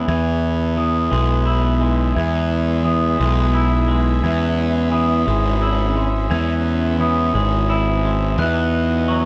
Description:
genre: rock.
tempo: 58 BPM (dotted quarters).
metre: 6/8.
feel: straight.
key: E major.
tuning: A4 = 438 Hz.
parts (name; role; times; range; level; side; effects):
glockenspiel with rubber mallets; arpeggios; 0.0-9.3 s; C#6 to G#6; -27 LUFS; equal; none.
twangy electric guitar; arpeggios; 0.0-9.3 s; E3 to E4; -26 LUFS; equal; none.
fuzz picked electric bass; bass; 0.0-9.3 s; G#1 to E2; -20 LUFS; equal; overdrive.
muted studio string section; sustained chords; 0.1-9.3 s; B3 to E5; -32 LUFS; equal; none.
room: moderate studio reverb, RT60 0.5 s.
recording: band playing live in one room.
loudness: -18 LUFS.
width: mono.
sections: 0.1-9.3 A section.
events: none.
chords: 0.1 E; 4.2 C#m; 8.4 B/E.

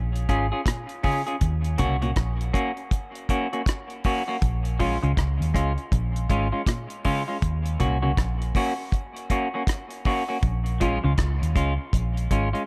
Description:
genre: roots reggae.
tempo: 80 BPM.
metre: 4/4.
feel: swing 62% on 16ths.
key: Bb minor.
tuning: A4 = 440 Hz.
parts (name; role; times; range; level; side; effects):
vintage muted fingered electric bass; bass; 0.0-12.5 s; Ab1 to Eb2; -27 LUFS; equal; none.
deep reggae drum kit; drums; 0.2-12.7 s; hi-hat, kick drum, rim click; -28 LUFS; equal; none.
semi-hollow electric guitar; accompaniment; 0.3-12.6 s; Ab3 to Ab4; -30 LUFS; equal; dub echo.
semi-hollow electric guitar; arpeggios; 0.7-11.1 s; Bb2 to F3; -33 LUFS; equal; ensemble chorus.
room: light reverb.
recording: echo-heavy mix, faint mains hum.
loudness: -25 LUFS.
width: mono.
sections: 0.0-12.7 A section.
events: none.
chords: 0.0 Bbm7; 1.4 Ebm7 (rootless); 4.4 Bbm7; 7.4 Ebm7 (rootless); 10.4 Bbm7.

